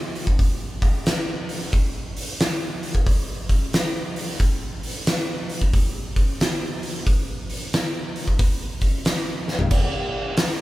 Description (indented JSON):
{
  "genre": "rock",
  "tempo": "90 BPM",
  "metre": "4/4",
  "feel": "swing 64% on 8ths",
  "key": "none",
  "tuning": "none",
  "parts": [
    { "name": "oversized low-tuned drum kit", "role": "drums", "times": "0.2-10.6 s", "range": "crash cymbal, hi-hat, kick drum, snare drum, toms", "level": "-21 LUFS", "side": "equal", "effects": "none" }
  ],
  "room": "little or no reverb",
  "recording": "band playing live in one room",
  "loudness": "-21 LUFS",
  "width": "side -17 dB against mid",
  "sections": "0.0-9.7 A section",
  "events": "drum fill 9.4-9.7",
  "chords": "none"
}